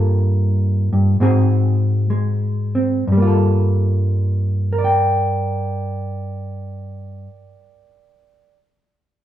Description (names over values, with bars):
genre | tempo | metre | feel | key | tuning
solo jazz | 60-76 BPM | 4/4 | swing 67% on 8ths, rubato | G minor | A4 = 440 Hz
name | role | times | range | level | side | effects
hollow-body jazz guitar | solo | 0.0-8.6 s | G2 to G5 | -16 LUFS | equal | none
room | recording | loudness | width
moderate large studio reverb, RT60 1.3 s | minimal, uncompressed stereo recording | -16 LUFS | side -11 dB against mid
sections
0.0-3.1 A section; 3.1-7.0 B section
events
slowing down 0.0-3.1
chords
0.0 Gm9; 1.2 Ab7; 3.1 Gm9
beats
0.36 1.20 2.11 | 3.08 4.07 5.04 6.03